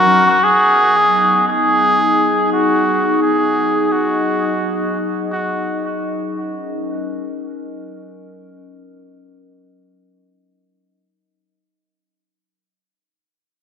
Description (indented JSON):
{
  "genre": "ambient",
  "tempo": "86 BPM",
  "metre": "4/4",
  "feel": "swing 59% on 16ths",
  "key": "G# minor",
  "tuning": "A4 = 442 Hz",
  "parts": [
    { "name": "trumpet with cup mute", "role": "melody", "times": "0.0-6.0 s", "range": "F#4 to G#4", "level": "-14 LUFS", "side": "equal", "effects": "dub echo" },
    { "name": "warbly tape-like pad", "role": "sustained chords", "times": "0.0-11.2 s", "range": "F#3 to D#5", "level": "-20 LUFS", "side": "left 2 dB", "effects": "chorus, built-in reverb" }
  ],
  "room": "moderate plate reverb, RT60 2.6 s",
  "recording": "echo-heavy mix",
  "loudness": "-14 LUFS",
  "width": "side -7 dB against mid",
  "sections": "0.1-11.2 A section",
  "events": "fade-out 0.1-11.2",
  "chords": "0.1 G#m7; 5.7 D#m7",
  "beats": "| 0.08 0.78 1.48 2.17 | 2.87 3.57 4.27 4.97 | 5.66 6.36 7.06 7.76 | 8.45 9.15 9.85 10.55"
}